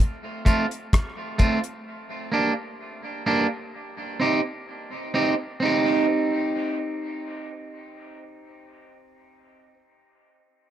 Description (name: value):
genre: dub reggae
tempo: 64 BPM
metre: 4/4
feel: straight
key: C dorian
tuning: A4 = 440 Hz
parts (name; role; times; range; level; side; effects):
- damped 70s drum kit; drums; 0.0-1.8 s; hi-hat, kick drum, rim click; -19 LUFS; equal; none
- electric guitar at the edge of break-up; accompaniment; 0.5-9.8 s; A3 to G4; -24 LUFS; right 2 dB; dub echo
room: light reverb, small room reverb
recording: echo-heavy mix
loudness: -22 LUFS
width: side -11 dB against mid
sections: 0.0-5.6 A section; 5.6-9.4 B section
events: none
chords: 0.0 F; 1.9 Gm; 3.7 Cm